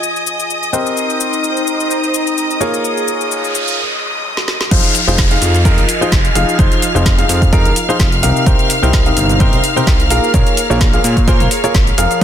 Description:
piano house; 128 BPM; 4/4; swing 54% on 16ths; F minor; A4 = 440 Hz
rich studio string section; sustained chords; 0.0-12.2 s; Eb5 to F6; -20 LUFS; left 1 dB; sidechain pumping
clear baby grand piano; riff; 0.0-12.2 s; C3 to F5; -18 LUFS; left 1 dB; sidechain pumping, ping-pong delay
garage drum kit; drums; 0.0-12.2 s; crash cymbal, hi-hat, shaker, snare drum; -20 LUFS; left 2 dB
airy breathy pad; texture; 0.0-12.2 s; Eb4 to Bb5; -22 LUFS; equal; chorus, sidechain pumping
noise sweep and downlifter; sound effects; 3.2-8.5 s; -21 LUFS; equal
fat analog bass; bass; 4.7-12.2 s; F1 to Bb2; -16 LUFS; equal; sidechain pumping
electronic kick drum; drums; 4.7-12.2 s; -13 LUFS; equal
light reverb, digital ambience; dense, heavily limited modern master; -11 LUFS; side -9 dB against mid
0.0-4.7 A section; 4.7-12.2 B section
noise sweep 3.2-4.7; drum fill 4.4-4.7; drop 4.7-12.2
0.0 Fm7; 0.7 Cm7; 2.6 Bbm7; 4.7 Fm7; 8.2 Cm7; 10.1 Bbm7

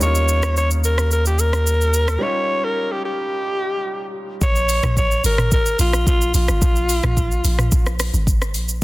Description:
amapiano; 109 BPM; 4/4; straight; A4 = 439 Hz
raspy alto saxophone; melody; 0.0-8.0 s; F4 to Db5; -21 LUFS; equal; tape echo
clear grand piano; accompaniment; 0.0-4.4 s; G3 to Bb4; -28 LUFS; equal
round analog bass; bass; 0.0-2.2 s; Eb2; -18 LUFS; equal
afro-pop drum kit; drums; 0.0-8.8 s; hi-hat, kick drum, rim click, shaker, toms; -20 LUFS; equal; soft clipping on snare
deep log drum bass; bass; 4.4-8.8 s; Ab1 to Bb1; -20 LUFS; equal
digital ambience; dense, heavily limited modern master; -16 LUFS; side -19 dB against mid
0.0-4.4 A section; 4.4-8.8 B section
break 2.2-4.4; drop 4.4-8.8
0.0 Eb7; 4.4 Absus2

